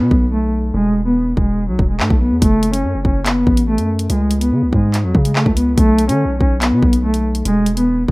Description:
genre	hip hop, drill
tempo	143 BPM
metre	4/4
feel	half-time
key	F# minor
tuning	A4 = 439 Hz
part	bright cello	melody	0.0-8.1 s	F#3 to C#4	-16 LUFS	equal	low-pass filter
part	long sustained 808-style bass	bass	0.0-8.1 s	E1 to D3	-18 LUFS	equal	none
part	drill drum kit	drums	0.1-8.1 s	handclaps, hi-hat, kick drum	-17 LUFS	equal	none
room	digital ambience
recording	rough home demo mix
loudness	-13 LUFS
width	side -23 dB against mid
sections	0.0-8.1 A section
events	break 0.0-2.4; filter sweep on cello 0.0-8.1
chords	0.0 N.C.; 0.7 E; 2.4 F#m; 4.1 C#5; 5.8 N.C.; 7.5 E

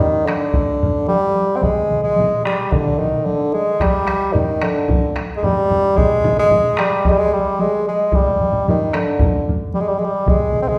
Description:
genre	japanese traditional, taiko drum ensemble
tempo	111 BPM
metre	4/4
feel	straight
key	G miyako bushi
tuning	A4 = 440 Hz
part	warm bassoon	melody	0.0-10.8 s	D3 to C4	-19 LUFS	equal	none
part	taiko ensemble	percussion	0.1-10.7 s	none	-28 LUFS	equal	none
part	taiko ensemble	percussion	0.3-9.6 s	none	-25 LUFS	equal	none
part	taiko ensemble	percussion	0.5-10.4 s	none	-24 LUFS	equal	none
part	taiko ensemble	percussion	1.6-6.9, 10.3-10.8 s	none	-26 LUFS	equal	none
room	wet recital hall reverb, RT60 1.3 s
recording	recorded in a church or concert hall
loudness	-17 LUFS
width	mono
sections	0.0-10.8 A section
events	none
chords	none

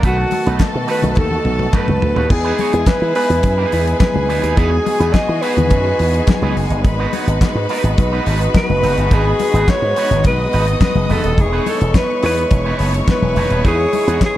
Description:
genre	disco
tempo	106 BPM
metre	4/4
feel	straight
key	E major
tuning	A4 = 440 Hz
part	clear studio string section	second line	0.0-14.4 s	G#4 to D#6	-25 LUFS	left 1 dB	none
part	electric guitar with an envelope filter	accompaniment	0.0-14.4 s	A3 to C#5	-26 LUFS	right 6 dB	none
part	clear studio string section	sustained chords	0.0-14.4 s	D#3 to F#4	-24 LUFS	left 1 dB	none
part	slap bass with an envelope filter	bass	0.0-14.2 s	D#1 to E3	-18 LUFS	equal	none
part	damped 70s drum kit	drums	0.0-14.3 s	crash cymbal, hi-hat, kick drum, snare drum, toms	-17 LUFS	equal	none
part	breathy alto saxophone	melody	0.1-14.4 s	F#4 to D#5	-19 LUFS	equal	none
part	congas	percussion	0.3-14.3 s	none	-26 LUFS	left 7 dB	none
part	group handclap	percussion	0.6-14.3 s	none	-35 LUFS	left 7 dB	none
room	light reverb, small room reverb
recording	dark, warm production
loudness	-13 LUFS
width	side -14 dB against mid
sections	0.0-2.3 A section; 2.3-14.4 A section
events	drum fill 1.2-2.3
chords	0.0 B7; 2.3 Emaj7; 6.8 G#m7

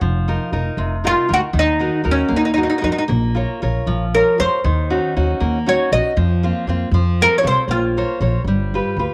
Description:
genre	italian folk, Italian serenade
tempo	78 BPM (dotted quarters)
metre	6/8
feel	straight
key	Bb minor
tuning	A4 = 439 Hz
part	nylon-string guitar	accompaniment	0.0-9.1 s	C3 to Db5	-24 LUFS	equal	none
part	upright bass	bass	0.0-9.0 s	F1 to F2	-22 LUFS	equal	none
part	oud	melody	1.1-8.9 s	Db4 to Eb5	-20 LUFS	equal	none
room	light reverb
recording	none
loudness	-18 LUFS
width	mono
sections	0.0-9.1 A section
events	none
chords	0.0 F7sus4; 1.6 Ebm; 3.1 Bbm; 4.6 Ebm7; 6.2 Fsus4; 6.9 F; 7.7 Bbmadd9; 8.5 G7

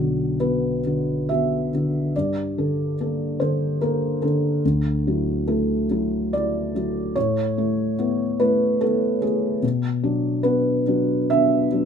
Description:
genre	neoclassical minimalist piano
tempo	72 BPM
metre	3/4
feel	uneven beats, rubato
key	B minor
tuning	A4 = 441 Hz
part	felt-muted upright piano	solo	0.0-11.9 s	B1 to E5	-20 LUFS	equal	none
room	moderate studio reverb, RT60 0.6 s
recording	minimal, uncompressed stereo recording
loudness	-20 LUFS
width	side -7 dB against mid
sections	0.0-11.9 A section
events	none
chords	0.0 Bm; 2.1 Gmadd9; 4.6 Dadd9; 7.2 Asus2; 9.6 Bm

